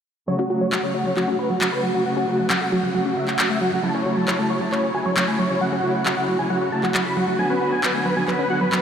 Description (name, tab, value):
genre	uplifting trance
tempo	135 BPM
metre	4/4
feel	straight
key	F# minor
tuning	A4 = 440 Hz
part	big supersaw lead	melody	0.3-8.8 s	F#4 to B5	-24 LUFS	equal	low-pass filter, tape echo
part	dark studio string section	sustained chords	0.3-8.8 s	C#3 to F#4	-24 LUFS	equal	low-pass filter
part	analog pluck	arpeggios	0.3-8.8 s	F#3 to F#4	-26 LUFS	right 1 dB	chorus, tape echo
part	electronic handclaps	drums	0.7-8.8 s	none	-26 LUFS	left 1 dB	studio reverb
room	wet huge ambient reverb, RT60 4.7 s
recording	dreamy mix soaked in reverb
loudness	-19 LUFS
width	side -8 dB against mid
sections	0.3-8.8 A section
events	filter sweep on supersaw synth 0.3-8.8; filter sweep on string section 0.3-8.8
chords	0.3 F#m; 7.4 Bm